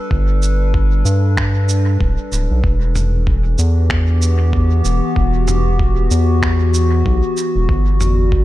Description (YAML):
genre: ambient dub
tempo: 95 BPM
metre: 4/4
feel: swing 58% on 16ths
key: E minor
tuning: A4 = 439 Hz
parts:
  - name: warbly tape-like pad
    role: sustained chords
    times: 0.0-8.4 s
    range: E3 to B4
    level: -21 LUFS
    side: left 1 dB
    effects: chorus, built-in reverb
  - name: round analog bass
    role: bass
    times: 0.1-8.4 s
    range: D1 to G2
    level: -14 LUFS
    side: equal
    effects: none
  - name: electronic kick drum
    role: drums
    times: 0.1-8.4 s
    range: none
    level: -19 LUFS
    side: equal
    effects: studio reverb
  - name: lo-fi sampler-style drum kit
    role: drums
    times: 0.4-8.2 s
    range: finger snaps, shaker, toms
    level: -24 LUFS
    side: right 1 dB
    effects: studio reverb, dub echo
room: little or no reverb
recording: none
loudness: -13 LUFS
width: side -15 dB against mid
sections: 0.0-8.4 A section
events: fade-in on ambient pad 0.0-8.4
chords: 0.0 Gadd9; 2.6 Em7; 7.7 Gmaj7